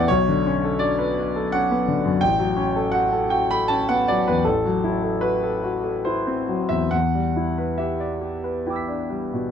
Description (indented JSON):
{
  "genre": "classical, impressionist solo piano",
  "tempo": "66-88 BPM",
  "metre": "3/4",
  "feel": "rubato",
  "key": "unclear",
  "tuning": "A4 = 440 Hz",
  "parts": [
    { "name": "clear concert grand piano", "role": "solo", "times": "0.0-9.5 s", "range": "A1 to B6", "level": "-20 LUFS", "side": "left 1 dB", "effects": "none" }
  ],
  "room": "light reverb",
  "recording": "dark, warm production",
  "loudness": "-20 LUFS",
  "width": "side -8 dB against mid",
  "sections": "0.0-9.5 A section",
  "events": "none",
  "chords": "0.1 Bm9; 2.2 A13; 4.4 Am6; 6.9 Em7"
}